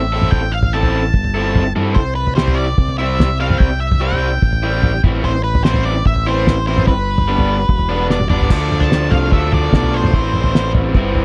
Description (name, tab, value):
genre	indie rock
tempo	147 BPM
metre	4/4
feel	straight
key	C major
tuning	A4 = 440 Hz
part	octave-fuzz lead guitar	melody	0.0-10.7 s	B4 to A5	-24 LUFS	equal	distortion, tape echo
part	growling fingered electric bass	bass	0.0-11.2 s	E1 to G2	-21 LUFS	equal	overdrive
part	raw garage guitar	riff	0.1-11.2 s	E3 to A4	-22 LUFS	equal	overdrive
part	cloth-damped thuddy drum kit	drums	0.2-11.2 s	crash cymbal, kick drum, snare drum, toms	-18 LUFS	equal	none
room	small room ambience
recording	dry, close 1970s-style studio recording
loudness	-16 LUFS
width	mono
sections	0.0-8.5 A section; 8.5-11.2 B section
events	drum fill 8.1-8.5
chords	0.0 Am; 2.0 C; 5.0 Am; 6.9 G; 8.5 Dm; 10.1 Am